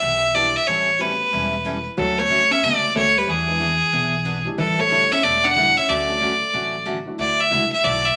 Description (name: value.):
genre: country, western swing.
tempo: 184 BPM.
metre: 4/4.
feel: swing 63% on 8ths.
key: D major.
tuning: A4 = 440 Hz.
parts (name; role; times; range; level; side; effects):
clear fiddle; melody; 0.0-8.2 s; G#4 to F#5; -20 LUFS; equal; none.
picked steel-string acoustic guitar; accompaniment; 0.0-8.0 s; D3 to A4; -32 LUFS; equal; none.
upright bass; bass; 0.0-8.1 s; E1 to E2; -35 LUFS; equal; none.
warm upright piano; accompaniment; 0.3-7.7 s; F#3 to A4; -36 LUFS; equal; none.
hollow-body jazz guitar; second line; 2.0-6.9 s; E3 to D4; -29 LUFS; equal; none.
room: wet studio reverb, RT60 0.8 s.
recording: none.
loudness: -19 LUFS.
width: mono.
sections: 0.0-7.2 A section.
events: none.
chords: 0.0 Em7; 0.7 A13; 2.0 Dmaj7; 3.3 E7; 4.6 A7sus4; 5.9 Dmaj7; 7.2 Dadd9.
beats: 0.02 0.35 | 0.68 1.00 1.33 1.65 | 1.98 2.30 2.63 2.96 | 3.28 3.61 3.93 4.26 | 4.58 4.91 5.23 5.56 | 5.88 6.21 6.53 6.86 | 7.18 7.51 7.83 8.16.